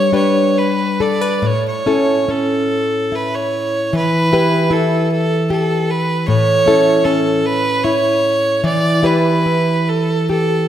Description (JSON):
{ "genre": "celtic folk, Celtic slow air", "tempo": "68-80 BPM", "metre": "3/4", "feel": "rubato", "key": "A mixolydian", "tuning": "A4 = 440 Hz", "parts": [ { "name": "clear fiddle", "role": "melody", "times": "0.0-10.7 s", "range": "A4 to D5", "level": "-17 LUFS", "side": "right 2 dB", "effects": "none" }, { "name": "nylon-string guitar", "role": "accompaniment", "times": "0.0-10.7 s", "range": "A2 to B4", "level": "-16 LUFS", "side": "left 1 dB", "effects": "none" } ], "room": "wet scoring stage reverb, RT60 1.8 s", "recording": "none", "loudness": "-13 LUFS", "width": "side -10 dB against mid", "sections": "0.0-1.4 A section; 1.4-10.7 B section", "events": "none", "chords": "0.0 G; 1.4 A; 3.9 Em; 6.3 A; 8.6 Em", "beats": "0.56 | 1.43 2.28 3.12 | 3.93 4.72 5.50 | 6.28 7.05 7.84 | 8.64 9.44 10.28" }